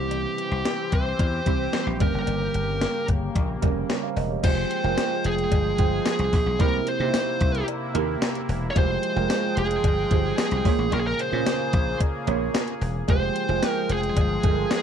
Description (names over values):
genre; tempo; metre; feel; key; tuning
1980s-style pop; 111 BPM; 4/4; straight; F harmonic minor from 4.4 s; A4 = 440 Hz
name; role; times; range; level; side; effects
high-gain lead guitar; melody; 0.0-14.8 s; G4 to Db5; -27 LUFS; left 1 dB; distortion, tape echo
dark concert grand piano; accompaniment; 0.0-14.8 s; G2 to G5; -29 LUFS; right 15 dB; none
sweeping resonant pad; sustained chords; 0.0-14.8 s; C3 to G5; -31 LUFS; left 2 dB; chorus
dry thumbed slap bass; bass; 0.0-14.6 s; E1 to C3; -27 LUFS; left 1 dB; none
gated 80s digital drum machine; drums; 0.1-14.8 s; crash cymbal, hi-hat, kick drum, snare drum, tambourine; -24 LUFS; left 1 dB; gated reverb, gated reverb snare
cowbell; percussion; 0.1-14.8 s; none; -38 LUFS; left 19 dB; none
room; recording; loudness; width
little or no reverb; dry, close 1970s-style studio recording; -21 LUFS; side -8 dB against mid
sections
0.0-4.4 A section; 4.4-14.8 B section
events
none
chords
0.0 C; 2.0 Gdim; 4.4 Fmadd9; 6.6 C7; 8.8 Fmadd9; 10.7 Bbm7; 13.1 Fmadd9